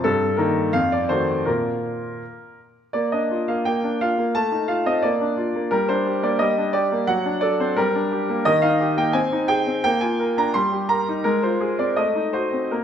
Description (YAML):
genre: classical-period piano sonatina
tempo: 86 BPM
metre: 2/4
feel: rubato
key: Bb major, Eb major from 8.5 s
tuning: A4 = 440 Hz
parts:
  - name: clear concert grand piano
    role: solo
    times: 0.0-12.8 s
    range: F2 to C6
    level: -19 LUFS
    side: equal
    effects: none
room: moderate recital hall reverb, RT60 1.6 s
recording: none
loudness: -19 LUFS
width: side -8 dB against mid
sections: 0.0-2.9 A section; 2.9-12.8 B section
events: none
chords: 0.0 Eb/G; 0.7 F7b9; 1.5 Bb5; 2.9 Bb; 4.3 F7/A; 5.0 Bb; 5.7 Gm; 7.1 D7/F#; 7.8 Gm; 8.5 Eb; 9.2 Ab/C; 9.9 Bb; 10.6 Eb/G; 11.3 Fm/Ab; 12.0 Adim7